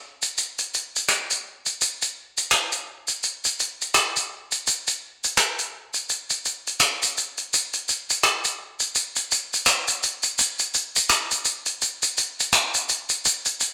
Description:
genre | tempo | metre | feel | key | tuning
R&B | 84 BPM | 4/4 | swing 59% on 16ths | none | none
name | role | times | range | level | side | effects
maracas and finger snaps | percussion | 0.2-13.7 s | none | -23 LUFS | equal | none
room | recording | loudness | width
wet large studio reverb, RT60 1.1 s | band playing live in one room | -23 LUFS | mono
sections
0.0-9.0 A section; 9.0-13.7 B section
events
none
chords
none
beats
| 0.38 1.10 1.81 2.52 | 3.24 3.95 4.67 5.38 | 6.10 6.81 7.53 8.24 | 8.95 9.67 10.38 11.10 | 11.81 12.53 13.24

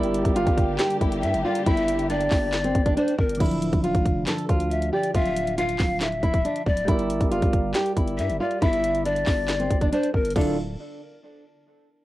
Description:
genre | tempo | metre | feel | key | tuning
hip hop, trap | 138 BPM | 4/4 | half-time | D minor | A4 = 440 Hz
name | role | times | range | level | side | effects
nylon-string guitar | melody | 0.0-10.6 s | C4 to A4 | -26 LUFS | equal | low-pass filter, cassette tape, plate reverb
soft electric-piano-like synth keys | accompaniment | 0.0-10.6 s | D3 to D5 | -30 LUFS | right 1 dB | chorus, low-pass filter, cassette tape, plate reverb
warm symphonic string section | sustained chords | 0.0-3.4 s | D3 to G4 | -33 LUFS | left 2 dB | cassette tape, plate reverb
growling 808-style bass | bass | 0.0-10.8 s | D1 to G2 | -29 LUFS | equal | none
trap drum kit | drums | 0.0-10.5 s | crash cymbal, handclaps, hi-hat, kick drum, snare drum | -24 LUFS | equal | cassette tape
breathy bright large pan pipes | second line | 1.2-10.6 s | A4 to F5 | -28 LUFS | left 2 dB | cassette tape, tape echo, plate reverb
room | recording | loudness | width
light reverb | home recording on cassette | -21 LUFS | side -16 dB against mid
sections
0.0-3.4 A section; 3.4-10.4 B section; 10.4-12.0 C section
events
none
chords
0.0 Gm; 3.4 Dmadd9; 6.9 Gm; 10.4 Dmadd9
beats
0.36 0.79 1.23 | 1.66 2.10 2.53 2.97 | 3.40 3.84 4.27 4.71 | 5.14 5.58 6.01 6.45 | 6.88 7.32 7.75 8.19 | 8.62 9.05 9.49 9.93 | 10.36

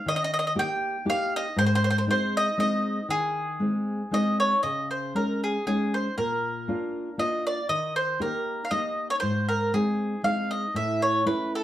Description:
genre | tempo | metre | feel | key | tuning
italian folk, Italian serenade | 118 BPM | 3/4 | straight | Ab major, Db major from 4.6 s | A4 = 440 Hz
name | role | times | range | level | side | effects
mandolin | melody | 0.0-11.6 s | Ab4 to G5 | -26 LUFS | equal | none
nylon-string guitar | accompaniment | 0.1-11.6 s | Ab2 to G4 | -28 LUFS | left 1 dB | none
room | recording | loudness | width
wet studio reverb, RT60 0.7 s | heard from further back in the room, faint mains hum | -24 LUFS | side -12 dB against mid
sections
0.0-4.6 A section; 4.6-11.6 B section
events
none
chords
0.1 Eb; 1.6 Ab; 4.6 Dbsus2; 6.2 Bb; 7.7 Eb; 9.2 Ab; 10.7 A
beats
| 0.05 0.56 1.06 | 1.57 2.07 2.58 | 3.09 3.60 4.11 | 4.63 5.14 5.66 | 6.17 6.68 7.18 | 7.69 8.20 8.71 | 9.22 9.73 10.24 | 10.75 11.26

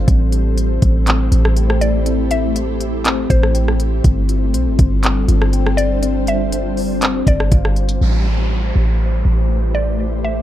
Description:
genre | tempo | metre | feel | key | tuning
hip hop, atmospheric cloud-rap | 121 BPM | 4/4 | half-time | A minor | A4 = 440 Hz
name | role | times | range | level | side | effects
ethereal airy pad | sustained chords | 0.0-10.4 s | G3 to C5 | -23 LUFS | equal | ensemble chorus, built-in reverb, sidechain pumping
muted felt-like synth keys | arpeggios | 0.0-8.0 s | C4 to G5 | -24 LUFS | left 7 dB | chorus, low-pass filter, analog delay
warm 808-style bass | bass | 0.0-10.4 s | G1 to B1 | -16 LUFS | equal | none
smooth R&B drum kit | drums | 0.1-8.0 s | handclaps, hi-hat, kick drum, rim click | -17 LUFS | equal | none
mallet-like synth pluck | melody | 1.8-10.4 s | C5 to E5 | -23 LUFS | left 1 dB | chorus, low-pass filter, analog delay
downlifter | sound effects | 8.0-10.4 s | none | -29 LUFS | right 1 dB | none
room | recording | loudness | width
little or no reverb | dark, warm production | -14 LUFS | side -12 dB against mid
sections
0.0-8.0 A section; 8.0-10.4 B section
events
none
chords
0.1 Am7; 4.0 G9sus4; 8.0 Am9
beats
| 0.08 0.57 1.07 1.57 | 2.06 2.56 3.05 3.55 | 4.04 4.54 5.04 5.53 | 6.03 6.52 7.02 7.52 | 8.01 8.51 9.00 9.50 | 9.99

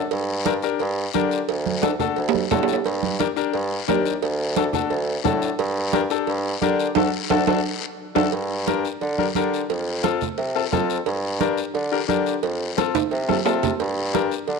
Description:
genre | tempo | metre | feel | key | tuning
latin, cumbia | 175 BPM | 4/4 | straight | G harmonic minor, G minor from 8.3 s | A4 = 442 Hz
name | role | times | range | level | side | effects
clear bassoon | bass | 0.0-14.6 s | D2 to D3 | -25 LUFS | right 2 dB | none
congas | percussion | 0.1-14.6 s | none | -28 LUFS | right 12 dB | none
cowbell and timbales | percussion | 0.1-14.6 s | none | -26 LUFS | right 13 dB | none
guiro | percussion | 0.1-14.6 s | none | -33 LUFS | left 13 dB | none
bright upright piano | accompaniment | 0.5-14.3 s | C4 to Bb4 | -24 LUFS | left 10 dB | none
room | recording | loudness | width
moderate plate reverb, RT60 2.8 s | 1960s-style stereo with parts hard left and right | -20 LUFS | side -4 dB against mid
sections
0.0-8.3 A section; 8.3-14.6 B section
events
drum fill 1.8-2.9, 7.5-8.3, 12.9-13.8; band accent 7.0-8.3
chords
0.1 Gm; 1.5 D; 2.9 Gm; 4.2 D; 5.6 Gm; 7.0 D; 8.3 Gm; 9.7 F; 11.1 Gm; 12.4 F; 13.8 Gm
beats
| 0.12 0.46 0.80 1.15 | 1.49 1.83 2.17 2.51 | 2.86 3.20 3.54 3.88 | 4.23 4.57 4.91 5.25 | 5.59 5.94 6.28 6.62 | 6.96 7.31 7.65 7.99 | 8.33 8.68 9.02 9.36 | 9.70 10.04 10.38 10.73 | 11.07 11.41 11.75 12.10 | 12.44 12.78 13.12 13.46 | 13.80 14.14 14.49

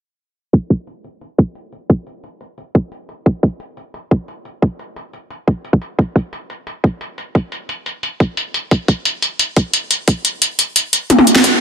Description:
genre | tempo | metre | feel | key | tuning
dark technical drum and bass | 176 BPM | 4/4 | straight | none | none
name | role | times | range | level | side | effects
drum and bass drum kit | drums | 0.5-11.5 s | hi-hat, snare drum, toms | -14 LUFS | equal | low-pass filter on hats, low-pass filter on toms, low-pass filter on snare, low-pass filter on room
electronic kick drum | drums | 0.5-11.5 s | none | -12 LUFS | equal | high-pass filter on kick
room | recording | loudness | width
light reverb | dense, heavily limited modern master, low-pass filter | -15 LUFS | side -8 dB against mid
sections
0.5-11.4 A section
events
filter sweep on drum 0.5-11.4; filter sweep 0.5-11.4; kick drops out 10.8-11.4; drum fill 11.1-11.4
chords
none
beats
| 0.53 0.87 1.21 1.55 | 1.90 2.24 2.58 2.92 | 3.26 3.60 3.94 4.28 | 4.62 4.96 5.30 5.64 | 5.99 6.33 6.67 7.01 | 7.35 7.69 8.03 8.37 | 8.71 9.05 9.39 9.74 | 10.08 10.42 10.76 11.10 | 11.44

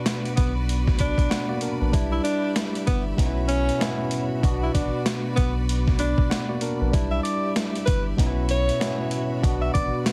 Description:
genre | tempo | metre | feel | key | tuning
hip hop, boom-bap hip-hop | 96 BPM | 4/4 | swing 60% on 16ths | B minor | A4 = 440 Hz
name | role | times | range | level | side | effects
mellow tenor saxophone | melody | 0.0-10.0 s | B3 to E5 | -31 LUFS | equal | digital delay
tine electric piano | accompaniment | 0.0-10.1 s | B2 to B5 | -30 LUFS | equal | cassette tape
bright studio string section | sustained chords | 0.0-10.1 s | F#4 to B5 | -40 LUFS | equal | none
boom bap sampler-style drum kit | drums | 0.1-10.1 s | hi-hat, kick drum, snare drum | -27 LUFS | equal | none
soft dub sub bass | bass | 0.4-9.9 s | G1 to B1 | -28 LUFS | equal | none
room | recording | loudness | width
little or no reverb | heavily compressed radio sound | -24 LUFS | mono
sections
0.0-6.9 A section; 6.9-10.1 B section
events
none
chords
0.0 Bm; 1.9 Em7/B; 3.2 F#7sus4/B; 4.4 Bm; 6.9 Em7/B; 8.2 F#7sus4/B; 9.4 Bm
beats
0.06 0.68 1.31 | 1.93 2.56 3.18 3.81 | 4.43 5.06 5.68 6.31 | 6.93 7.56 8.18 8.81 | 9.43 10.06

